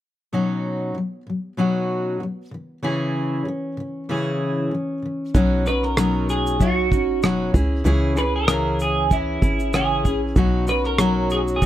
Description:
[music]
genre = acoustic pop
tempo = 96 BPM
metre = 4/4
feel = swing 55% on 16ths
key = B major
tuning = A4 = 438 Hz
[part]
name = fingerpicked steel-string acoustic guitar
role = accompaniment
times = 0.3-11.7 s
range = B2 to G#4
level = -22 LUFS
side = left 1 dB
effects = none
[part]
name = hollow knocking FM bass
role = bass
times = 5.3-11.7 s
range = F#1 to C#2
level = -24 LUFS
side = equal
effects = none
[part]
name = cloth-damped thuddy drum kit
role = drums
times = 5.3-11.7 s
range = kick drum, rim click, shaker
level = -21 LUFS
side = equal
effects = none
[part]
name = twelve-string electric guitar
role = melody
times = 5.7-11.7 s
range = E4 to B4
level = -23 LUFS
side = right 2 dB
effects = lush chorus
[sound]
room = light reverb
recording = none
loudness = -19 LUFS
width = side -12 dB against mid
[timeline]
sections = 0.3-5.3 A section; 5.3-11.7 B section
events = none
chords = 0.3 Badd9; 2.5 C#m; 5.3 Badd9; 7.5 C#m; 10.4 Badd9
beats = | 0.32 0.95 1.58 2.21 | 2.83 3.46 4.09 4.72 | 5.34 5.97 6.60 7.23 | 7.85 8.48 9.11 9.73 | 10.36 10.99 11.62

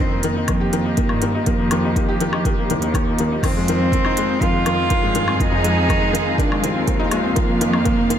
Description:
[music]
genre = piano and strings electronica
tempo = 122 BPM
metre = 4/4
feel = straight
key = F minor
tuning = A4 = 442 Hz
[part]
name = warm cello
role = melody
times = 0.0-8.2 s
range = Bb3 to F4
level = -23 LUFS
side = right 2 dB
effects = tape echo
[part]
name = muted studio string section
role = sustained chords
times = 0.0-8.2 s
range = F3 to F5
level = -27 LUFS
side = right 2 dB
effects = sidechain pumping
[part]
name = clear upright piano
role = riff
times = 0.0-8.2 s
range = Eb3 to G4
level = -22 LUFS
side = left 3 dB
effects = tape echo
[part]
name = muted studio cello section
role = bass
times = 0.0-8.2 s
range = C2 to G2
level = -24 LUFS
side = equal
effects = sidechain pumping
[part]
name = organic electronic drum kit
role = drums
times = 0.2-8.2 s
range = crash cymbal, hi-hat, woodblock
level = -28 LUFS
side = left 1 dB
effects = overdrive
[part]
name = electronic kick drum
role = drums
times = 0.5-8.0 s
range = none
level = -22 LUFS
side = right 1 dB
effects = overdrive
[sound]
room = little or no reverb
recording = none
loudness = -16 LUFS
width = side -9 dB against mid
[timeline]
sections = 0.0-8.2 A section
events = none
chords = 0.0 Eb/F; 3.4 Fm7; 7.4 Eb5/F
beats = 0.48 0.97 | 1.47 1.96 2.45 2.94 | 3.43 3.92 4.42 4.91 | 5.40 5.89 6.38 6.88 | 7.37 7.86

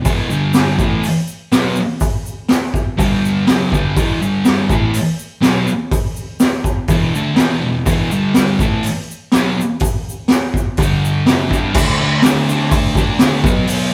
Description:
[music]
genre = garage rock duo or trio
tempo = 123 BPM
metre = 4/4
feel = straight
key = E minor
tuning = A4 = 439 Hz
[part]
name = thick fuzz guitar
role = riff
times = 0.0-13.9 s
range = E2 to D4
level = -19 LUFS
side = equal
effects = distortion
[part]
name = raw garage drum kit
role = drums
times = 0.0-13.8 s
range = crash cymbal, hi-hat, kick drum, snare drum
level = -18 LUFS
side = equal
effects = none
[part]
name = tube shaker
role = percussion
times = 0.1-13.8 s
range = none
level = -36 LUFS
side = equal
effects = none
[sound]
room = light reverb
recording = band playing live in one room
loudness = -16 LUFS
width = mono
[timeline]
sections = 0.0-11.8 A section; 11.8-13.9 B section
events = none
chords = 0.3 G5; 0.8 E5; 3.0 G5; 3.5 Em; 4.2 G5; 4.7 E5; 8.1 G5; 8.6 E5; 10.8 G5; 11.3 Dadd11/F#; 11.8 D5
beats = | 0.07 0.56 1.04 1.53 | 2.02 2.51 2.99 3.48 | 3.97 4.46 4.94 5.43 | 5.92 6.41 6.89 7.38 | 7.87 8.35 8.84 9.33 | 9.81 10.30 10.78 11.27 | 11.76 12.24 12.72 13.21 | 13.69

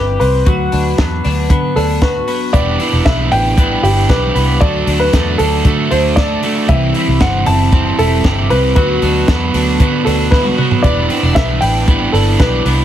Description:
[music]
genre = jangly indie pop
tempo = 116 BPM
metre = 4/4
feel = straight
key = E minor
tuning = A4 = 440 Hz
[part]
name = warm upright piano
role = melody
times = 0.0-12.8 s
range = G4 to A5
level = -18 LUFS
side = left 1 dB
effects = ping-pong delay
[part]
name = twelve-string electric guitar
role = arpeggios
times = 0.0-12.8 s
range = E3 to A4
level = -19 LUFS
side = left 2 dB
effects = lush chorus, ping-pong delay
[part]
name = vintage muted fingered electric bass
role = bass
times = 0.0-12.8 s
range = E1 to D3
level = -16 LUFS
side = equal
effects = none
[part]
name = compact cocktail drum kit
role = drums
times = 0.2-12.8 s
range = hi-hat, kick drum, snare drum, toms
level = -17 LUFS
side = equal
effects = none
[part]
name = crunchy overdriven guitar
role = accompaniment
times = 2.5-12.8 s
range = C3 to B4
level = -18 LUFS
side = right 6 dB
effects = none
[sound]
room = light reverb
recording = heavily compressed radio sound, multiband compression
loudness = -11 LUFS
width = side -11 dB against mid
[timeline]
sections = 0.0-12.8 A section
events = drum fill 10.3-10.8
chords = 0.5 Bm/D; 2.5 Em7; 4.6 D; 6.7 C; 8.8 Bm/D; 10.8 Em7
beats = | 0.47 0.98 1.50 2.02 | 2.54 3.06 3.58 4.09 | 4.61 5.13 5.65 6.17 | 6.69 7.21 7.73 8.25 | 8.77 9.28 9.80 10.32 | 10.84 11.36 11.88 12.40

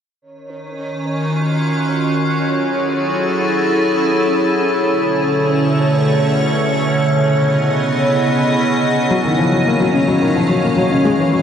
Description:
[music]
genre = IDM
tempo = free time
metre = none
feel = none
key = Eb phrygian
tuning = A4 = 438 Hz
[part]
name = icy glass pad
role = sustained chords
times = 0.7-11.4 s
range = B2 to F5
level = -15 LUFS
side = equal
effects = chorus, built-in reverb
[part]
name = bubbling stepped-filter texture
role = texture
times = 0.2-11.4 s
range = Db4 to Db5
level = -22 LUFS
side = right 1 dB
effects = chorus, built-in reverb
[part]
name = felt-muted upright piano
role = arpeggios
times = 9.1-11.4 s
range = Db3 to Bb3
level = -15 LUFS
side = left 3 dB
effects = low-pass filter, digital delay
[sound]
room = wet lush hall reverb, RT60 2.4 s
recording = dark, warm production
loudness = -14 LUFS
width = side -8 dB against mid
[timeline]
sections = 0.2-11.4 A section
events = none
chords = 0.2 Ebm9; 2.2 Gbm9; 4.7 Bm9; 6.9 Dbm9; 9.1 Ebm9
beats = free time

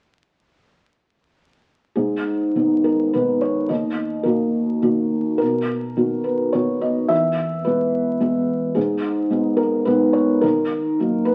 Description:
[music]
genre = neoclassical minimalist piano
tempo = 106 BPM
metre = 3/4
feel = rubato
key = G# minor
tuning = A4 = 440 Hz
[part]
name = felt-muted upright piano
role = solo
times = 2.0-11.3 s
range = D#2 to E5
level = -20 LUFS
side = equal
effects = none
[sound]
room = wet studio reverb, RT60 0.7 s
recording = very old 78 rpm record, vinyl crackle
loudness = -20 LUFS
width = mono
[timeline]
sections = 2.0-11.3 A section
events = none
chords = 2.0 G#m; 3.7 D#m; 5.4 B; 7.1 E; 8.8 G#m; 10.4 D#m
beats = | 1.96 2.55 3.14 | 3.70 4.26 4.83 | 5.41 5.98 6.55 | 7.11 7.66 8.21 | 8.76 9.31 9.86 | 10.43 11.00

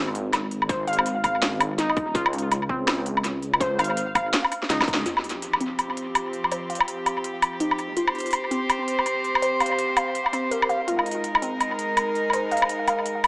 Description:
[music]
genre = half-time drum and bass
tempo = 165 BPM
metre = 4/4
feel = swing 60% on 16ths, half-time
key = F minor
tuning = A4 = 438 Hz
[part]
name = dark detuned saw bass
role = bass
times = 0.0-5.0 s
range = Eb1 to Db2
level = -29 LUFS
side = equal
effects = none
[part]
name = drum and bass drum kit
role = drums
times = 0.1-13.3 s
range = hi-hat, snare drum, woodblock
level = -24 LUFS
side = equal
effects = tape echo
[part]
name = warbly dusty pluck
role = arpeggios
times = 0.7-13.0 s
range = C4 to F5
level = -28 LUFS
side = equal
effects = chorus, analog delay
[part]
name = electronic kick drum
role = drums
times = 0.7-5.0 s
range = none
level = -29 LUFS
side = equal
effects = none
[part]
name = rich symphonic cello section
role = sustained chords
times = 5.1-13.3 s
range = F3 to C5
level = -26 LUFS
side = equal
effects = sidechain pumping
[part]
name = sub drop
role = sound effects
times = 5.1-6.5 s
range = none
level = -49 LUFS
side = equal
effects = none
[sound]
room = moderate plate reverb, RT60 1.3 s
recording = echo-heavy mix, small speaker sound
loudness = -22 LUFS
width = side -24 dB against mid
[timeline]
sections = 0.0-5.1 A section; 5.1-13.3 B section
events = drop 0.0-5.1; drum fill 4.7-5.1; band accent 4.9; impact 5.1-6.5; filter sweep on synth pluck 5.1-13.3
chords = 0.0 Ab5; 2.1 Db; 5.1 F5; 8.0 C5; 10.9 Ab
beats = 0.33 | 0.69 1.06 1.42 1.79 | 2.15 2.51 2.88 3.24 | 3.60 3.97 4.33 4.70 | 5.06 5.42 5.79 6.15 | 6.51 6.88 7.24 7.60 | 7.97 8.33 8.70 9.06 | 9.42 9.79 10.15 10.51 | 10.88 11.24 11.60 11.97 | 12.33 12.70 13.06

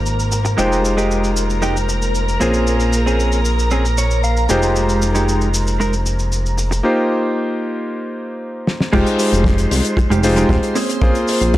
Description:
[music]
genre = nu-disco, nu disco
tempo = 115 BPM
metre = 4/4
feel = straight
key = F minor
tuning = A4 = 440 Hz
[part]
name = bright electric grand piano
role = accompaniment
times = 0.0-11.6 s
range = Ab3 to C5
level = -19 LUFS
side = equal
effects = sidechain pumping, tape echo
[part]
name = string machine, full ensemble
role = sustained chords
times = 0.0-11.6 s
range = Bb4 to C6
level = -25 LUFS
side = equal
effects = ensemble chorus, sidechain pumping
[part]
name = chorused synth bass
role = bass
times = 0.0-11.6 s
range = Eb1 to C2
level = -18 LUFS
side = equal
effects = none
[part]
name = damped 70s drum kit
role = drums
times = 0.1-11.6 s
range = cabasa, crash cymbal, hi-hat, snare drum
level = -24 LUFS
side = left 1 dB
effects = none
[part]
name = direct-recorded clean electric guitar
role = riff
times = 0.3-11.3 s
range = Ab3 to G5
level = -22 LUFS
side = right 2 dB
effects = wide subtle chorus, low-pass filter, tape echo
[part]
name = kick drum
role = drums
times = 8.9-11.6 s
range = none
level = -18 LUFS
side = equal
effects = none
[sound]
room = light reverb, small room ambience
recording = dark, warm production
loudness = -14 LUFS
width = side -15 dB against mid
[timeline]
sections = 0.0-8.9 A section; 8.9-11.6 B section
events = clean electric guitar fill 3.7-4.8; break 6.8-8.9; drum fill 8.7; drop 8.9-11.6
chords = 0.0 Abmaj13; 0.6 Fm9; 2.4 Bbm9; 4.5 Fm9; 6.8 Eb69/Bb; 8.9 Fm9; 10.8 Bbm9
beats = 0.06 | 0.58 1.11 1.63 2.15 | 2.67 3.19 3.71 4.24 | 4.76 5.28 5.80 6.32 | 6.84 7.37 7.89 8.41 | 8.93 9.45 9.97 10.50 | 11.02 11.54

